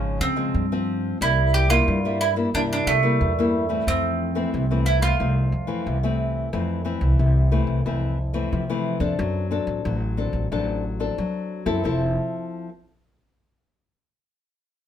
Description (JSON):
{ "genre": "samba and choro", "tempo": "90 BPM", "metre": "4/4", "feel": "straight", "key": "F major", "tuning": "A4 = 440 Hz", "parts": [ { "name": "bowl-back mandolin", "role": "melody", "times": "0.0-6.0 s", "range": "A3 to G4", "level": "-24 LUFS", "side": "right 3 dB", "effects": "none" }, { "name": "nylon-string guitar", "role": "accompaniment", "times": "0.0-12.7 s", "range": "F2 to A4", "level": "-25 LUFS", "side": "left 4 dB", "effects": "none" }, { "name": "upright bass", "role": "bass", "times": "0.0-12.2 s", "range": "F1 to F#3", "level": "-24 LUFS", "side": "right 1 dB", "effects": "none" } ], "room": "moderate studio reverb, RT60 0.6 s", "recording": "minimal, uncompressed stereo recording, faint mains hum", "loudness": "-20 LUFS", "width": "side -9 dB against mid", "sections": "0.0-6.5 A section; 6.5-11.8 B section; 11.8-14.5 C section", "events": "none", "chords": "0.0 Dbmaj7; 1.2 C7; 3.9 Fmaj7; 9.2 D7; 11.8 Fmaj7", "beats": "0.55 | 1.21 1.88 2.54 3.21 | 3.87 4.54 5.20 5.87 | 6.53 7.20 7.86 8.53 | 9.19 9.86 10.52 11.19 | 11.85 12.52" }